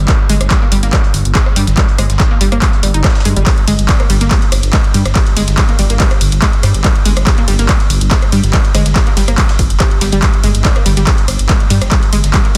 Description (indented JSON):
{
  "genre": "driving peak-time techno",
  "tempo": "142 BPM",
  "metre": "4/4",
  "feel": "straight",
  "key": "G phrygian",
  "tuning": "A4 = 440 Hz",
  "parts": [
    { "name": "dark detuned saw bass", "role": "bass", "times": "0.0-12.6 s", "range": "F1 to G2", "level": "-16 LUFS", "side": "equal", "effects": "sidechain pumping" },
    { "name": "analog pluck", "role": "riff", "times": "0.1-12.6 s", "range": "G3 to G4", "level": "-22 LUFS", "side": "equal", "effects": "chorus, sidechain pumping, dub echo" },
    { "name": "dusty soul sampler-style drum kit", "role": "drums", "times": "0.1-12.6 s", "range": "hi-hat, snare drum", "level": "-31 LUFS", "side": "equal", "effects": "none" },
    { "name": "electronic kick drum", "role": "drums", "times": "0.1-12.4 s", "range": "none", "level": "-15 LUFS", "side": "equal", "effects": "none" },
    { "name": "punchy analog drum machine", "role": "drums", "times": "0.1-12.6 s", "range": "handclaps, hi-hat, ride cymbal, rim click", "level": "-20 LUFS", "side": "equal", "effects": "sidechain pumping on hats, sidechain pumping on cymbals" }
  ],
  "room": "digital ambience",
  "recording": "dense, heavily limited modern master",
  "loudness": "-12 LUFS",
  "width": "mono",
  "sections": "0.0-12.6 A section",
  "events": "none",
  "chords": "none",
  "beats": "| 0.08 0.51 0.93 1.35 | 1.77 2.20 2.62 3.04 | 3.46 3.89 4.31 4.73 | 5.15 5.58 6.00 6.42 | 6.84 7.27 7.69 8.11 | 8.54 8.96 9.38 9.80 | 10.22 10.65 11.07 11.49 | 11.91 12.34"
}